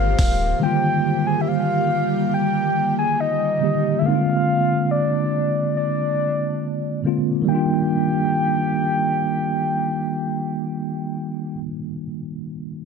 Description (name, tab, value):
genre	R&B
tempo	70 BPM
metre	4/4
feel	straight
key	Eb major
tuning	A4 = 441 Hz
part	soft octave-layered synth lead	melody	0.0-11.6 s	D5 to Ab5	-23 LUFS	left 1 dB	chorus
part	mellow tine electric piano	accompaniment	0.0-12.8 s	D3 to G4	-22 LUFS	right 1 dB	medium stereo tremolo
part	ethereal airy pad	sustained chords	0.0-4.0 s	G3 to C5	-27 LUFS	equal	ensemble chorus, built-in reverb, sidechain pumping
part	warm sub bass	bass	0.0-0.5 s	D1 to G1	-22 LUFS	equal	none
room	light reverb, digital ambience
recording	none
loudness	-19 LUFS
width	side -5 dB against mid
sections	0.0-7.5 A section; 7.5-10.9 B section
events	none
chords	0.0 Abmaj9; 0.6 Ebmaj7; 4.0 Bb7; 7.5 Ebmaj7